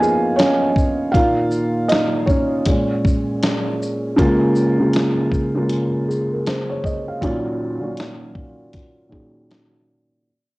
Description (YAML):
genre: lo-fi hip hop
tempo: 79 BPM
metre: 4/4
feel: swing 63% on 16ths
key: Bb minor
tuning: A4 = 440 Hz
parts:
  - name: felt-muted upright piano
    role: accompaniment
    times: 0.0-10.3 s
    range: Bb2 to Ab5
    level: -18 LUFS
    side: equal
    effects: low-pass filter, cassette tape
  - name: dusty soul sampler-style drum kit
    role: drums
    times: 0.0-9.7 s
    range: hi-hat, kick drum, shaker, snare drum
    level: -21 LUFS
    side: equal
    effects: cassette tape
room: light reverb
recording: home recording on cassette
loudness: -16 LUFS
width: side -20 dB against mid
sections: 0.0-4.2 A section; 4.2-10.3 B section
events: felt piano solo 0.0-4.2; fade-out 4.2-10.3; filter sweep on felt piano 4.2-10.3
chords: 0.0 Db7; 1.1 Bbmadd11; 2.7 Bbm7; 7.2 Ebm9/Bb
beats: 0.38 | 1.14 1.90 2.66 3.42 | 4.18 4.94 5.70 6.46 | 7.22 7.98 8.74 9.50